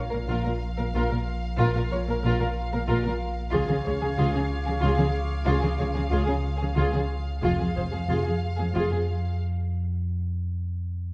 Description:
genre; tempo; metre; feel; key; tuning
cinematic, suspense film score; 92 BPM; 3/4; straight; unclear; A4 = 445 Hz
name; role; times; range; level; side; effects
muted studio violin section; melody; 0.0-9.4 s; F5; -39 LUFS; equal; none
muted studio viola section; accompaniment; 0.0-9.0 s; G#4 to Bb4; -35 LUFS; equal; none
muted studio cello section; bass; 0.0-9.0 s; F2 to C#3; -32 LUFS; equal; none
deep rumbling drone; drone; 0.0-11.1 s; Bb1 to F2; -31 LUFS; equal; built-in reverb
muted studio violin section; second line; 0.1-9.0 s; F4 to Db5; -34 LUFS; equal; none
muted studio double bass section; bass; 0.3-8.8 s; F1 to C#2; -32 LUFS; equal; none
muted studio violin section; texture; 3.5-7.1 s; C#6 to G#6; -44 LUFS; equal; none
room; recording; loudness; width
moderate scoring stage reverb, RT60 1.8 s; dark, warm production; -26 LUFS; mono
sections
0.0-11.1 A section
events
break 9.4-11.1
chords
0.0 Bb5; 3.5 C#; 7.4 Fm

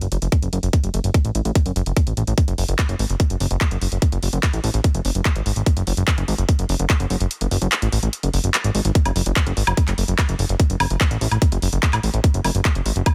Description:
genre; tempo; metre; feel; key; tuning
psychedelic trance; 146 BPM; 4/4; straight; F# minor; A4 = 440 Hz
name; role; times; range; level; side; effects
fat analog bass; bass; 0.0-13.0 s; F#1 to A1; -23 LUFS; equal; none
big-room dance drum kit; drums; 0.0-13.1 s; handclaps, hi-hat, woodblock; -27 LUFS; equal; overdrive
electronic kick drum; drums; 0.3-13.1 s; none; -19 LUFS; equal; overdrive
room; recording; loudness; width
little or no reverb; none; -20 LUFS; mono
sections
0.0-9.0 A section; 9.0-13.1 B section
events
kick drops out 7.3-9.0; drop 9.0-13.1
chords
none

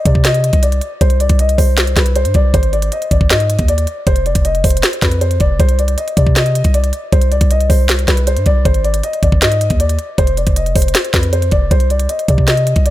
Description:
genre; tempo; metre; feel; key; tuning
hip hop, trap; 157 BPM; 4/4; half-time; C harmonic minor; A4 = 440 Hz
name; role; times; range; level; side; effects
dark concert grand piano; melody; 0.0-12.9 s; B4 to Eb5; -18 LUFS; left 2 dB; tape echo
long sustained 808-style bass; bass; 0.1-12.9 s; F1 to C3; -15 LUFS; equal; none
trap drum kit; drums; 0.1-12.9 s; hi-hat, kick drum, snare drum; -14 LUFS; equal; none
room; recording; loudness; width
digital ambience; none; -11 LUFS; side -14 dB against mid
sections
0.0-11.7 A section; 11.7-12.9 B section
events
none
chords
0.0 Cmadd9; 2.5 Ab5; 4.1 F5; 5.6 Cmadd9; 8.7 Ab5; 10.2 F5; 11.7 Cmadd9

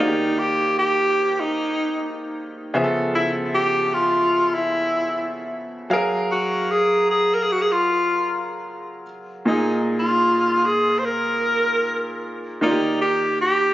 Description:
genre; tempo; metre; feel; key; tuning
R&B; 76 BPM; 4/4; swing 54% on 16ths; unclear; A4 = 440 Hz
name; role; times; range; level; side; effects
clear alto saxophone; melody; 0.0-13.7 s; Eb4 to C5; -19 LUFS; equal; ping-pong delay
clear baby grand piano; accompaniment; 0.0-13.7 s; Bb2 to F5; -24 LUFS; right 1 dB; none
room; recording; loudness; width
moderate lush hall reverb, RT60 2.4 s; recorded on a phone in the room, studio reverb, nothing above 7.6 kHz; -18 LUFS; side -15 dB against mid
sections
0.0-13.7 A section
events
none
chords
0.0 Ebmaj7; 2.8 Db7alt; 5.9 Gbmaj9; 9.5 Bb7sus4; 12.6 Ebmaj7

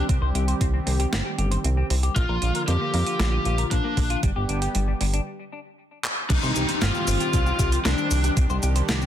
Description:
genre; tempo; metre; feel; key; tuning
synthwave; 116 BPM; 4/4; straight; C minor; A4 = 440 Hz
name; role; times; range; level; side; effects
lead guitar through a small cranked amp; melody; 0.0-8.3 s; D4 to G4; -29 LUFS; left 2 dB; overdrive, digital delay
brassy analog pad; sustained chords; 0.0-9.1 s; D3 to G4; -31 LUFS; right 1 dB; chorus, sidechain pumping
clean electric guitar; riff; 0.0-9.1 s; G3 to C5; -33 LUFS; left 4 dB; wide subtle chorus, digital delay
chorused synth bass; bass; 0.0-9.1 s; G1 to F2; -24 LUFS; equal; none
clean 12-bit digital drum machine; drums; 0.1-9.1 s; cabasa, crash cymbal, handclaps, hi-hat, snare drum; -29 LUFS; right 1 dB; none
electronic kick drum; drums; 0.1-8.5 s; none; -24 LUFS; equal; none
airy dreamy lead; second line; 6.3-8.3 s; D4 to F4; -30 LUFS; left 1 dB; chorus, digital delay
downlifter; sound effects; 6.3-9.1 s; none; -32 LUFS; equal; none
room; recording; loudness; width
light reverb; dense, heavily limited modern master; -21 LUFS; side -10 dB against mid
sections
0.0-6.3 A section; 6.3-9.1 B section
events
break 5.3-6.3; drum fill 6.0; band accent 6.0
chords
0.0 Cm; 2.2 Bb; 4.2 G; 6.3 Cm

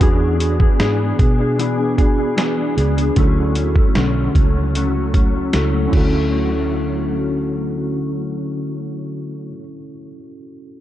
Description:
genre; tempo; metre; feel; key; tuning
indie pop, bedroom pop; 76 BPM; 4/4; straight; D lydian; A4 = 440 Hz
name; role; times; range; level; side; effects
mellow electric guitar; accompaniment; 0.0-9.7 s; D3 to G#4; -21 LUFS; left 3 dB; ensemble chorus, warbly pitch drift, analog delay
mellow tine electric piano; accompaniment; 0.0-10.8 s; B3 to A4; -24 LUFS; right 3 dB; medium stereo tremolo, analog delay
vintage muted fingered electric bass; bass; 0.0-9.5 s; B1 to B2; -21 LUFS; equal; none
lo-fi sampler-style drum kit; drums; 0.0-6.1 s; crash cymbal, hi-hat, kick drum, snare drum; -17 LUFS; equal; none
room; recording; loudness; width
light reverb, digital ambience; echo-heavy mix; -15 LUFS; side -13 dB against mid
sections
0.0-6.3 A section; 6.3-9.5 B section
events
none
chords
0.0 E7; 3.2 Dmaj7

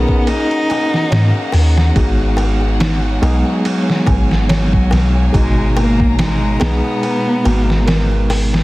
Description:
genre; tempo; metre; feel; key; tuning
trip hop; 71 BPM; 4/4; swing 56% on 16ths; unclear; A4 = 440 Hz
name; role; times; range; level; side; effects
warm cello; melody; 0.0-8.3 s; F#3 to D#4; -20 LUFS; equal; dub echo
bell-like tine electric piano; accompaniment; 0.0-8.6 s; B2 to A#4; -20 LUFS; equal; harmonic tremolo, tape echo
warm symphonic violin section; sustained chords; 0.0-8.6 s; F#4 to A#5; -27 LUFS; left 3 dB; none
small celesta; arpeggios; 0.0-8.6 s; D#4 to G#5; -28 LUFS; right 1 dB; tape echo
soft 808-style bass; bass; 0.0-8.6 s; G#1 to G#2; -15 LUFS; equal; tube saturation
trip hop sampler-style drum kit; drums; 0.1-8.6 s; hi-hat, kick drum, ride cymbal, snare drum; -18 LUFS; equal; overdrive, vintage 12-bit sampler grit
darbuka; percussion; 0.1-8.6 s; none; -28 LUFS; left 2 dB; none
room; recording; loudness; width
small room ambience; dense, heavily limited modern master, vinyl crackle; -12 LUFS; side -19 dB against mid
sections
0.0-8.6 A section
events
none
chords
0.0 Bmaj7/G#

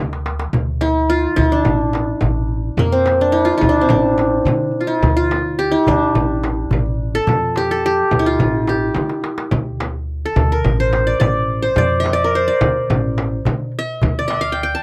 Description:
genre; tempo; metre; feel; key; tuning
Arabic maqam ensemble; 107 BPM; 4/4; straight; D maqam bayati; A4 = 440 Hz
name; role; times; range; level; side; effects
upright bass; bass; 0.0-14.7 s; A1 to D3; -24 LUFS; equal; none
darbuka; percussion; 0.1-14.4 s; none; -26 LUFS; equal; none
frame drum; percussion; 0.5-14.4 s; none; -27 LUFS; equal; none
qanun; melody; 0.8-14.8 s; Bb3 to A5; -19 LUFS; equal; none
room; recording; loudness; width
light reverb; dry, close 1970s-style studio recording; -17 LUFS; mono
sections
0.5-14.8 A section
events
drum fill 0.0-0.5, 9.0-9.5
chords
none

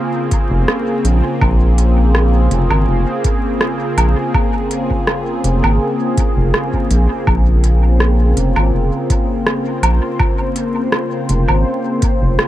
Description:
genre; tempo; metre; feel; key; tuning
ambient dub; 82 BPM; 4/4; swing 53% on 16ths; Bb minor; A4 = 439 Hz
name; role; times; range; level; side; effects
warm analog pad; sustained chords; 0.0-12.5 s; Db3 to C5; -18 LUFS; equal; chorus, vintage 12-bit sampler grit
electronic kick drum; drums; 0.3-12.2 s; none; -18 LUFS; equal; overdrive
organic electronic drum kit; drums; 0.3-12.5 s; hi-hat, rim click, woodblock; -20 LUFS; right 1 dB; dub echo
round analog bass; bass; 0.5-12.4 s; F1 to Bb1; -13 LUFS; equal; tube saturation
room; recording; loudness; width
light reverb; vinyl crackle; -13 LUFS; side -14 dB against mid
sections
0.0-12.5 A section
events
none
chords
0.0 Bbmadd9

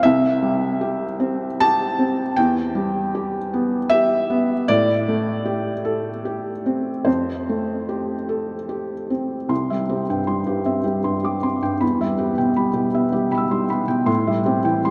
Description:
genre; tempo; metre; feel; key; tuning
neoclassical minimalist piano; 73-80 BPM; 3/4; rubato; C major; A4 = 440 Hz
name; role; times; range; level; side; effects
felt-muted upright piano; solo; 0.0-14.9 s; C2 to E6; -21 LUFS; equal; none
room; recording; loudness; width
wet cathedral reverb, RT60 5.0 s; in a vast, echoing space, nothing above 11.0 kHz; -21 LUFS; mono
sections
0.0-9.5 A section; 9.5-14.9 B section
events
none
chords
0.0 C; 2.4 Em; 4.7 Am7; 7.1 Fadd9; 9.5 C; 11.8 Em; 14.1 Am7

